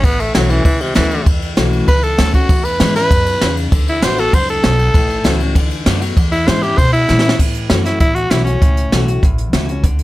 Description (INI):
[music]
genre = rockabilly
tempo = 196 BPM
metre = 4/4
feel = straight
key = A major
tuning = A4 = 440 Hz
[part]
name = raspy tenor saxophone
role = melody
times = 0.0-9.0 s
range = C3 to C5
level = -17 LUFS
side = equal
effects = none
[part]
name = picked steel-string acoustic guitar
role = accompaniment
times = 0.0-10.0 s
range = E2 to F#4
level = -21 LUFS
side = left 3 dB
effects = none
[part]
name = upright bass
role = bass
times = 0.0-10.0 s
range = A1 to B2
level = -18 LUFS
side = equal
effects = none
[part]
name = jazz brush drum kit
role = drums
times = 0.0-10.0 s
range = crash cymbal, hi-hat, kick drum, ride cymbal, snare drum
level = -15 LUFS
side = equal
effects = none
[sound]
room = little or no reverb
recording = none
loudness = -12 LUFS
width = side -17 dB against mid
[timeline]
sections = 0.0-7.4 A section; 7.4-10.0 B section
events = tenor saxophone solo 0.0-7.4; drum fill 7.1-7.4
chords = 0.0 A6; 2.5 E6; 3.7 D6; 5.0 A6; 5.6 D6; 6.2 E6; 7.4 A6